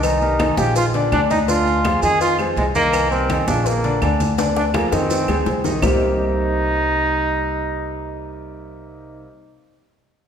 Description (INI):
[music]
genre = latin, salsa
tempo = 166 BPM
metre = 4/4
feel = straight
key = C minor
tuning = A4 = 439 Hz
[part]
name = bright trombone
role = melody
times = 0.0-9.3 s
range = Ab3 to Ab4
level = -21 LUFS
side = right 1 dB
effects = none
[part]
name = warm concert grand piano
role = accompaniment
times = 0.0-9.3 s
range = C3 to Eb5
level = -23 LUFS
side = left 2 dB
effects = none
[part]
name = upright bass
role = bass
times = 0.0-9.2 s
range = Bb1 to F2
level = -23 LUFS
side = equal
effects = none
[part]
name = agogo bells and timbales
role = percussion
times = 0.0-5.9 s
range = none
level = -28 LUFS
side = right 5 dB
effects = none
[part]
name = claves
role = percussion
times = 0.0-5.9 s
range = none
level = -34 LUFS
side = right 2 dB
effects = none
[part]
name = congas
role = percussion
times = 0.0-5.9 s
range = none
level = -29 LUFS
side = left 1 dB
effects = none
[part]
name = cowbell and bongos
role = percussion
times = 0.0-5.9 s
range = none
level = -28 LUFS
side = left 7 dB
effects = none
[part]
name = maracas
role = percussion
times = 0.0-5.9 s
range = none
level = -33 LUFS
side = right 4 dB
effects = none
[sound]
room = wet recital hall reverb, RT60 1.7 s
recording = recorded in a church or concert hall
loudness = -16 LUFS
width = side -8 dB against mid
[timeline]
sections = 0.0-5.8 A section; 5.8-8.7 B section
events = drum fill 4.4-5.8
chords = 0.0 Cm7; 0.8 Bb7; 1.5 Ddim; 2.2 Fm7; 2.9 Cm7; 3.7 Bb7; 4.4 Ddim; 5.1 Fm7; 5.8 Cm7